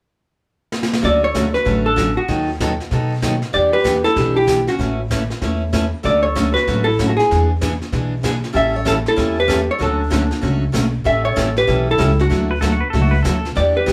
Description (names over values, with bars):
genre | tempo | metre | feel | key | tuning
country, western swing | 192 BPM | 4/4 | swing 63% on 8ths | D major | A4 = 440 Hz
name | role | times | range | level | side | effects
jazz brush drum kit | drums | 0.7-13.9 s | brushed snare drum, hi-hat, kick drum, snare drum | -27 LUFS | equal | none
vintage hollow-body jazz guitar | melody | 1.0-13.9 s | F#4 to E5 | -20 LUFS | equal | none
dark clarinet | second line | 1.0-13.9 s | B3 to A4 | -27 LUFS | equal | none
picked steel-string acoustic guitar | accompaniment | 1.0-13.9 s | D3 to B4 | -24 LUFS | equal | none
upright bass | bass | 1.0-13.9 s | A1 to B2 | -23 LUFS | equal | none
pedal steel guitar | second line | 12.5-13.5 s | F#4 to B4 | -26 LUFS | equal | none
room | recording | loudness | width
moderate studio reverb, RT60 0.5 s | band playing live in one room | -18 LUFS | mono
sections
0.0-1.0 A section; 1.0-13.9 B section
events
drum fill 0.7-1.0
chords
0.0 N.C.; 1.0 Dmaj7; 2.3 B7/D#; 3.5 Em7; 4.8 Aadd9; 6.0 Dmaj7; 7.3 E7; 8.5 A7; 9.8 Dmaj7; 11.1 A7; 12.3 Dadd9